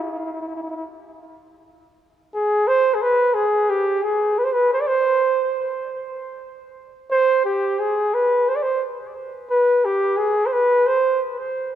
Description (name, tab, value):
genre	turkish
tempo	free time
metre	none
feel	none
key	unclear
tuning	A4 = 440 Hz
part	mellow flugelhorn	solo	0.0-11.2 s	E4-45c to D5	-18 LUFS	right 1 dB	analog delay
room	moderate scoring stage reverb, RT60 1.6 s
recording	dark, warm production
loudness	-17 LUFS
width	side -10 dB against mid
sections	0.0-11.8 A section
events	none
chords	none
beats	free time